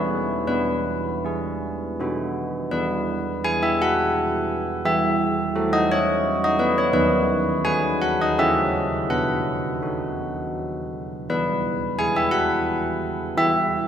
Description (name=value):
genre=classical, tune for church bells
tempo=84 BPM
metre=3/4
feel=straight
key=E major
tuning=A4 = 442 Hz
part: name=carillon bells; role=solo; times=0.0-13.9 s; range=D#3 to G#5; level=-20 LUFS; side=equal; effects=none
room=wet cathedral reverb, RT60 4.3 s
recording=none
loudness=-20 LUFS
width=side -9 dB against mid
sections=0.0-2.7 A section; 2.7-13.9 B section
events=none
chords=0.5 E/B; 2.0 B; 2.7 E; 4.9 F#m7/E; 7.0 B/D#; 8.4 A/C#; 9.1 B; 11.3 E